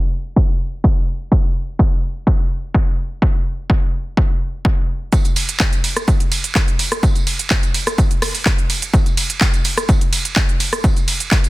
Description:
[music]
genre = house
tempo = 126 BPM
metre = 4/4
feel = straight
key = none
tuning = none
[part]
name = electronic kick drum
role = drums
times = 0.4-11.4 s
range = none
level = -15 LUFS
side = equal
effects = overdrive
[part]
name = garage drum kit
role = drums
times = 5.1-11.5 s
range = handclaps, hi-hat, ride cymbal, rim click, shaker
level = -20 LUFS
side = right 1 dB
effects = none
[part]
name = tambourine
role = percussion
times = 5.1-11.5 s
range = none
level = -29 LUFS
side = right 5 dB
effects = none
[sound]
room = little or no reverb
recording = dense, heavily limited modern master, low-pass filter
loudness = -15 LUFS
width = side -19 dB against mid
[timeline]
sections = 0.0-5.1 A section; 5.1-11.5 B section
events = filter sweep 0.0-5.1; drop 5.1-11.5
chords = none

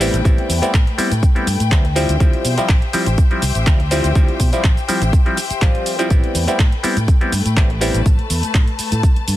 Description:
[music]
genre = filtered disco house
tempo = 123 BPM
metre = 4/4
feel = swing 54% on 16ths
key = A minor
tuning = A4 = 440 Hz
[part]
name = clav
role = accompaniment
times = 0.0-8.0 s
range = F3 to F4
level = -21 LUFS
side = equal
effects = phaser, sidechain pumping
[part]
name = bright symphonic string section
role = sustained chords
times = 0.0-9.4 s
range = A3 to A5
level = -26 LUFS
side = left 5 dB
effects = sidechain pumping
[part]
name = fingered electric bass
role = bass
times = 0.0-9.4 s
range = A1 to B2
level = -20 LUFS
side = equal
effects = sidechain pumping
[part]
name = punchy analog drum machine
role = drums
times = 0.0-9.4 s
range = handclaps, hi-hat, shaker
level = -24 LUFS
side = equal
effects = overdrive, sidechain pumping on hats, sidechain pumping on perc, sidechain pumping on cymbals
[part]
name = electronic kick drum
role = drums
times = 0.3-9.1 s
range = none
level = -14 LUFS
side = equal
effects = none
[sound]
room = little or no reverb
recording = dense, heavily limited modern master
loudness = -14 LUFS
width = side -14 dB against mid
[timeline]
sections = 0.0-9.4 A section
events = none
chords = 0.0 Am9; 2.0 Dm11; 6.1 Am9

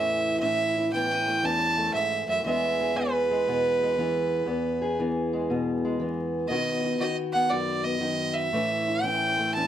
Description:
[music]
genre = acoustic country blues, solo or duo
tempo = 118 BPM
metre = 4/4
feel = swing 67% on 8ths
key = E major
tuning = A4 = 441 Hz
[part]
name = rich fiddle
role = melody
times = 0.0-9.7 s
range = B4 to A5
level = -26 LUFS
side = right 2 dB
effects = none
[part]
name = fingerpicked steel-string acoustic guitar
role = accompaniment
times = 0.0-9.7 s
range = E2 to G#4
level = -27 LUFS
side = left 1 dB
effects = none
[sound]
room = moderate studio reverb, RT60 0.6 s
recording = vinyl crackle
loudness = -24 LUFS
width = side -10 dB against mid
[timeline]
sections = 0.0-9.7 A section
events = none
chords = 0.0 A; 2.5 E; 6.5 B; 8.5 A

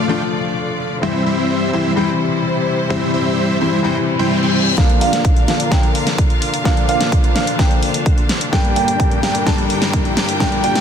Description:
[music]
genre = EDM, festival progressive house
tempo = 128 BPM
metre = 4/4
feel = straight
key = Bb lydian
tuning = A4 = 440 Hz
[part]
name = felt-muted upright piano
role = accompaniment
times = 0.0-10.8 s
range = G2 to F4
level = -20 LUFS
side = left 6 dB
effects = sidechain pumping, tape echo
[part]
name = clear symphonic string section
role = sustained chords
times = 0.0-10.8 s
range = C3 to G5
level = -24 LUFS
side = right 1 dB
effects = sidechain pumping
[part]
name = dense compressed supersaw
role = riff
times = 0.0-10.8 s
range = G3 to A5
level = -21 LUFS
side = right 1 dB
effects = sidechain pumping, low-pass filter, tape echo
[part]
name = reverse cymbal and riser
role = sound effects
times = 4.1-10.8 s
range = none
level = -27 LUFS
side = left 3 dB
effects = none
[part]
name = clear grand piano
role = arpeggios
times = 4.8-10.8 s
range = F5 to A5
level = -22 LUFS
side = right 4 dB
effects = sidechain pumping, low-pass filter, tape echo
[part]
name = fat analog bass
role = bass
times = 4.8-10.8 s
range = none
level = barely audible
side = none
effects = none
[part]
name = big-room dance drum kit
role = drums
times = 4.8-10.8 s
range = hi-hat, snare drum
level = -21 LUFS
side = equal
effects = low-pass filter on snare, low-pass filter on hats
[part]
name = electronic kick drum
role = drums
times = 4.8-10.5 s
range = none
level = -16 LUFS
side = right 1 dB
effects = none
[sound]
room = moderate lush hall reverb, RT60 1.7 s, small room ambience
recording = dense, heavily limited modern master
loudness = -14 LUFS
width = side -8 dB against mid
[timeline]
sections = 0.0-4.8 A section; 4.8-10.8 B section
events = reverse cymbal 4.1-4.8; build-up 4.8-10.8; drum fill 4.8-10.8; filter sweep on supersaw synth 4.8-10.8; filter sweep on grand piano 4.8-10.8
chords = 0.0 Dm; 1.0 C; 4.8 Bb; 8.5 Gm

